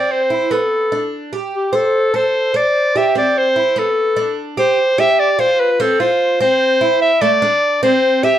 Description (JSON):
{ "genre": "latin", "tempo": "148 BPM", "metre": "4/4", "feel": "straight", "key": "A minor", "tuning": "A4 = 440 Hz", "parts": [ { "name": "clear clarinet", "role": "melody", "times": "0.0-8.4 s", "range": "G4 to E5", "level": "-14 LUFS", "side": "left 1 dB", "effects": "slapback echo" }, { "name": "Cuban tres", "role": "arpeggios", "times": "0.0-8.4 s", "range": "A3 to C5", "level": "-19 LUFS", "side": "right 3 dB", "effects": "none" } ], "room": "light reverb", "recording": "dry, close 1970s-style studio recording", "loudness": "-13 LUFS", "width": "side -11 dB against mid", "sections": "0.0-4.8 A section; 4.8-8.4 B section", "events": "none", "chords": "0.0 Cmaj13; 0.7 Bm7; 1.5 Am7; 3.2 Cmaj13; 4.0 Bm7; 4.8 Dm11; 5.6 F/C; 6.4 C; 7.2 Amadd11", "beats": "0.30 0.71 1.12 | 1.53 1.93 2.34 2.75 | 3.15 3.56 3.97 4.37 | 4.78 5.19 5.59 6.00 | 6.40 6.81 7.21 7.62 | 8.02" }